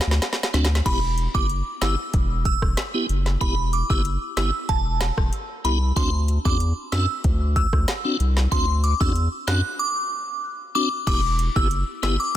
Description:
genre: dancehall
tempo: 94 BPM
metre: 4/4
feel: straight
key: E minor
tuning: A4 = 439 Hz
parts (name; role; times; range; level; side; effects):
- afro-pop drum kit; drums; 0.0-12.2 s; crash cymbal, hi-hat, kick drum, rim click, snare drum; -24 LUFS; equal; none
- saturated sub bass; bass; 0.1-12.2 s; E1 to F#2; -22 LUFS; equal; none
- tonewheel organ; accompaniment; 0.5-12.2 s; B3 to G4; -29 LUFS; left 1 dB; chorus vibrato, slow rotary speaker
- glassy synth bell; melody; 0.9-12.3 s; A5 to F#6; -26 LUFS; right 1 dB; chorus, phaser, ping-pong delay
room: little or no reverb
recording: dense, heavily limited modern master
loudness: -20 LUFS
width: side -12 dB against mid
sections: 0.9-11.1 A section; 11.1-12.4 B section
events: drum fill 0.0-0.9; break 9.8-11.1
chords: 0.0 D7; 0.9 Em; 6.0 D7; 11.1 Em

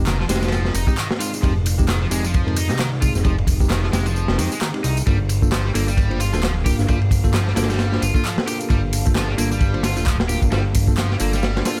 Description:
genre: breakbeat, breaks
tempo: 132 BPM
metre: 4/4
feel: swing 58% on 16ths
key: unclear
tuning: A4 = 440 Hz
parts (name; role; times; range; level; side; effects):
- deep dark ambient pad; sustained chords; 0.6-11.8 s; Bb3 to F5; -36 LUFS; equal; none
- bell-like tine electric piano; stabs; 0.0-11.8 s; Ab3 to C5; -30 LUFS; equal; vintage 12-bit sampler grit, delay
- fat analog bass; bass; 0.0-11.6 s; D1 to F2; -24 LUFS; equal; none
- cranked stack guitar; riff; 0.1-11.8 s; Eb3 to G4; -30 LUFS; equal; overdrive, tube saturation, delay
- crunchy breakbeat drum kit; drums; 0.1-11.8 s; kick drum, ride cymbal, snare drum; -24 LUFS; equal; none
- punchy analog drum machine; drums; 0.1-11.8 s; handclaps, hi-hat, tambourine; -32 LUFS; equal; overdrive
room: little or no reverb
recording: none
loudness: -20 LUFS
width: mono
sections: 0.0-11.8 A section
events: none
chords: 0.0 Fm9; 5.1 Gm9

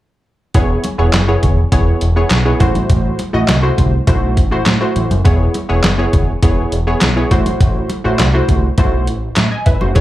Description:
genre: early-eighties boogie funk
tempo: 102 BPM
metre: 4/4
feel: straight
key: unclear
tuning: A4 = 441 Hz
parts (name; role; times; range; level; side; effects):
- funky polysynth comp; accompaniment; 0.5-10.0 s; A3 to G#5; -17 LUFS; equal; chorus, plate reverb, slapback echo
- fat analog bass; bass; 0.5-10.0 s; E1 to A2; -16 LUFS; equal; none
- detuned 8-bit digital drum machine; drums; 0.5-10.0 s; handclaps, hi-hat, kick drum, snare drum; -14 LUFS; equal; none
- congas; percussion; 0.5-10.0 s; none; -24 LUFS; equal; none
room: light reverb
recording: live gig heard through the venue's PA, club reverb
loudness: -12 LUFS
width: side -15 dB against mid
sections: 0.5-10.0 A section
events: none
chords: 0.5 E6; 2.6 Am6; 5.3 E6; 7.3 Am6

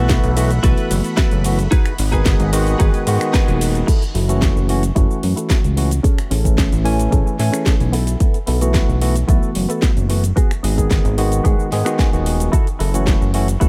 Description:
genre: nu-disco, nu disco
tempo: 111 BPM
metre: 4/4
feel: straight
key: F# dorian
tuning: A4 = 440 Hz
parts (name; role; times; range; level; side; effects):
- barky tine electric piano; accompaniment; 0.0-13.7 s; D#3 to G#5; -24 LUFS; equal; low-pass filter, analog delay
- lush unison pad; sustained chords; 0.0-3.9 s; A3 to B5; -33 LUFS; equal; chorus, phaser, sidechain pumping
- direct-recorded clean electric guitar; riff; 0.0-13.7 s; B3 to G#5; -28 LUFS; equal; analog chorus, low-pass filter, analog delay
- fat analog bass; bass; 0.0-13.7 s; D#1 to A2; -20 LUFS; equal; none
- electronic kick drum; drums; 0.1-13.7 s; none; -18 LUFS; equal; none
- house drum kit; drums; 0.1-13.7 s; cabasa, crash cymbal, finger snaps, hi-hat, ride cymbal, snare drum; -28 LUFS; equal; none
room: little or no reverb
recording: echo-heavy mix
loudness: -17 LUFS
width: mono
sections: 0.0-3.9 A section; 3.9-13.7 B section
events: drop 0.0-3.9; band accent 3.3; filter sweep on clean electric guitar 3.9-13.7; filter sweep on tine electric piano 3.9-13.7; clean electric guitar fill 11.7-12.5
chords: 0.0 B7sus4; 1.7 G#m7; 3.9 F#m7; 6.0 Amaj7; 7.9 B7sus4; 10.4 G#m7; 12.5 F#m7

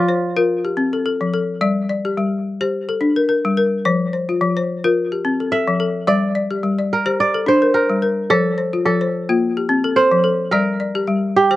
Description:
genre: west african traditional, West African string and xylophone music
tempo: 108 BPM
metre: 4/4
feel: swing 56% on 16ths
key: G dorian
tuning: A4 = 442 Hz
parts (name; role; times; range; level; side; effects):
- kora; melody; 0.0-1.4, 5.5-11.6 s; F4 to E5; -18 LUFS; right 3 dB; none
- balafon; arpeggios; 0.0-11.6 s; F3 to D5; -17 LUFS; left 3 dB; slapback echo
room: little or no reverb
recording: recorded outdoors, with no room sound, nothing above 10.5 kHz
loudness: -16 LUFS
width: side -15 dB against mid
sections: 0.0-11.6 A section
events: none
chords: 0.0 F; 1.6 Gm; 3.8 F; 6.1 Gm; 8.3 F; 10.5 Gm

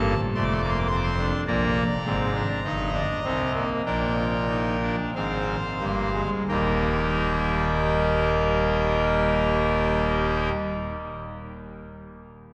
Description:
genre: classical, baroque-style 4-part fugue for pipe organ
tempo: 44-55 BPM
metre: 4/4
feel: straight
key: Eb major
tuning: A4 = 438 Hz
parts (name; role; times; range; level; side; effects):
- pipe organ, trumpet; solo; 0.0-10.5 s; Eb1 to D6; -25 LUFS; equal; none
room: wet cathedral reverb, RT60 5.4 s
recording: heard from further back in the room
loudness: -25 LUFS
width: mono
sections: 0.0-6.5 A section; 6.5-11.9 B section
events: slowing down 0.0-6.5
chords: 0.0 F; 1.5 Eb; 3.9 Bb7; 6.5 Eb

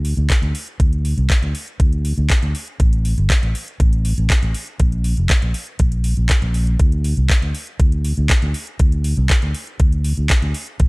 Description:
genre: nu-disco, nu disco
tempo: 120 BPM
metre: 4/4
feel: straight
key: unclear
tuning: A4 = 440 Hz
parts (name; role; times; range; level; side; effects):
- fingered electric bass; bass; 0.0-10.9 s; F1 to D2; -18 LUFS; equal; sidechain pumping
- house drum kit; drums; 0.0-10.9 s; handclaps, hi-hat; -24 LUFS; equal; overdrive
- electronic kick drum; drums; 0.3-10.9 s; none; -15 LUFS; equal; none
room: little or no reverb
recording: none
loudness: -16 LUFS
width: side -29 dB against mid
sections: 0.0-10.9 A section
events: none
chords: none

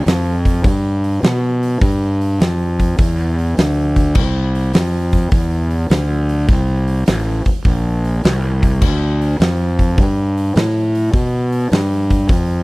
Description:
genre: blues rock power trio and southern rock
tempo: 103 BPM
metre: 4/4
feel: swing 67% on 8ths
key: G mixolydian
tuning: A4 = 440 Hz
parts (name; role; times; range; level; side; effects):
- fuzz fingered electric bass; bass; 0.0-12.6 s; A1 to B2; -16 LUFS; equal; overdrive
- huge arena drum kit; drums; 0.1-12.5 s; crash cymbal, hi-hat, kick drum, snare drum; -17 LUFS; equal; none
room: little or no reverb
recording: dry, close 1970s-style studio recording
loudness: -14 LUFS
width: side -23 dB against mid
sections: 0.0-12.6 A section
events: none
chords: none

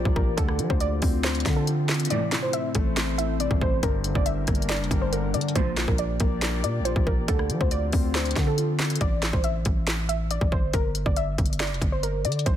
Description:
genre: hip hop, trap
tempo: 139 BPM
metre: 4/4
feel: half-time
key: A phrygian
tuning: A4 = 439 Hz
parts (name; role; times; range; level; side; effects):
- warbly dusty pluck; melody; 0.0-12.6 s; A4 to E5; -30 LUFS; equal; chorus, ping-pong delay
- dark baby grand piano; accompaniment; 0.0-9.0 s; G2 to D4; -32 LUFS; left 6 dB; none
- warbly tape-like pad; sustained chords; 0.0-9.0 s; D3 to D5; -35 LUFS; left 2 dB; chorus, built-in reverb
- growling 808-style bass; bass; 0.0-12.6 s; F1 to F3; -27 LUFS; equal; none
- trap drum kit; drums; 0.1-12.6 s; handclaps, hi-hat, kick drum, rim click, snare drum; -25 LUFS; equal; none
- dark symphonic string section; stabs; 2.1-2.4, 5.6-5.9 s; A2 to F3; -32 LUFS; right 6 dB; none
room: digital ambience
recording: dense, heavily limited modern master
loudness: -22 LUFS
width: side -11 dB against mid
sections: 0.0-9.0 A section; 9.0-12.6 B section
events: kick muted 2.1-2.5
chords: 0.4 Dm7; 2.1 Am; 3.8 Gm; 5.6 Bb6; 7.3 Dm7; 9.0 A5; 10.7 G5

